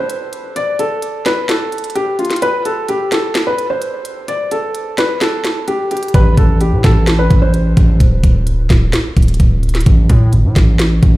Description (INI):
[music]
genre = hip hop, trap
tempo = 129 BPM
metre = 4/4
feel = half-time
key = A minor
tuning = A4 = 440 Hz
[part]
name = felt-muted upright piano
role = melody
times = 0.0-8.0 s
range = F4 to D5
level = -18 LUFS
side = left 1 dB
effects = ping-pong delay
[part]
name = trap drum kit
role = drums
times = 0.1-11.1 s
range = hi-hat, kick drum, snare drum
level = -13 LUFS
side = equal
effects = none
[part]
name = distorted 808-style bass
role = bass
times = 6.1-11.2 s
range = D1 to A2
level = -12 LUFS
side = equal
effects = distortion
[sound]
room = little or no reverb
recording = played on a big sound system in a bare room, large studio reverb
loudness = -11 LUFS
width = side -17 dB against mid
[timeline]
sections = 0.0-11.2 A section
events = break 0.0-6.1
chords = 0.0 N.C.; 6.1 Am; 8.0 N.C.